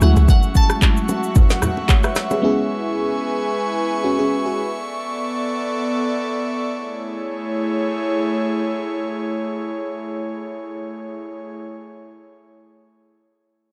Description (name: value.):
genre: amapiano.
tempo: 112 BPM.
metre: 4/4.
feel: swing 55% on 16ths.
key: A major.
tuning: A4 = 440 Hz.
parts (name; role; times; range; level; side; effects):
glassy wavetable pluck; melody; 0.0-1.3 s; F#5 to A5; -29 LUFS; equal; chorus, tape echo.
FM electric piano with soft pad layer; accompaniment; 0.0-4.7 s; F#3 to F#5; -24 LUFS; equal; chorus.
airy breathy pad; sustained chords; 0.0-11.6 s; A3 to C#6; -26 LUFS; equal; chorus, sidechain pumping.
afro-pop drum kit; drums; 0.0-2.4 s; handclaps, kick drum, rim click, shaker, snare drum; -17 LUFS; equal; none.
bongos and congas; percussion; 0.2-2.4 s; none; -27 LUFS; equal; none.
room: light reverb, digital ambience.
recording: dark, warm production.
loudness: -20 LUFS.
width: mono.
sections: 0.0-6.7 A section; 6.7-11.0 B section.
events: none.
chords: 0.0 Dmaj9#11 (rootless); 2.4 C#m7; 4.6 Bm11; 6.7 Amaj7.